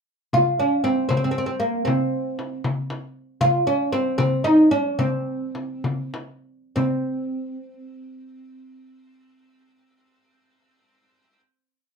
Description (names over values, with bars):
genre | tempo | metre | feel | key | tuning
Persian modal ensemble | 62-78 BPM (dotted quarters) | 6/8 | straight | C dastgah shur | A4 = 439 Hz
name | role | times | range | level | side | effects
oud | melody | 0.3-11.4 s | Bb3 to F4 | -20 LUFS | right 1 dB | none
frame drum | percussion | 0.3-7.1 s | none | -26 LUFS | left 2 dB | none
room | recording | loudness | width
moderate studio reverb, RT60 0.5 s | minimal, uncompressed stereo recording | -20 LUFS | side -5 dB against mid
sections
0.3-6.8 A section; 6.8-10.6 final note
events
slowing down 3.4-6.8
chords
none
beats
| 0.34 1.10 | 1.87 2.64 | 3.41 4.19 | 4.99 5.85 | 6.77 7.73 | 8.70 9.66